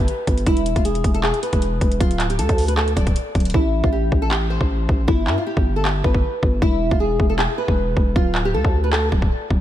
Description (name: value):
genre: hip hop, trap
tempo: 156 BPM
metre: 4/4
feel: half-time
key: unclear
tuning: A4 = 440 Hz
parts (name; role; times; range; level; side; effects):
- nylon-string guitar; melody; 0.0-9.6 s; E4 to D5; -23 LUFS; equal; analog chorus, ping-pong delay
- growling 808-style bass; bass; 0.0-9.6 s; D1 to G2; -21 LUFS; equal; none
- trap drum kit; drums; 0.1-9.6 s; handclaps, hi-hat, kick drum; -20 LUFS; equal; vintage 12-bit sampler grit
room: light reverb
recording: none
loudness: -17 LUFS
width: side -12 dB against mid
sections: 0.0-9.6 A section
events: hi-hats muted 3.5-9.6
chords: 0.5 E5; 2.0 D5; 3.5 Am; 5.1 G; 6.6 E5; 8.2 D5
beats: 0.08 | 0.47 0.85 1.24 1.62 | 2.00 2.39 2.77 3.16 | 3.54 3.93 4.31 4.70 | 5.08 5.47 5.85 6.24 | 6.62 7.00 7.39 7.77 | 8.16 8.54 8.93 9.31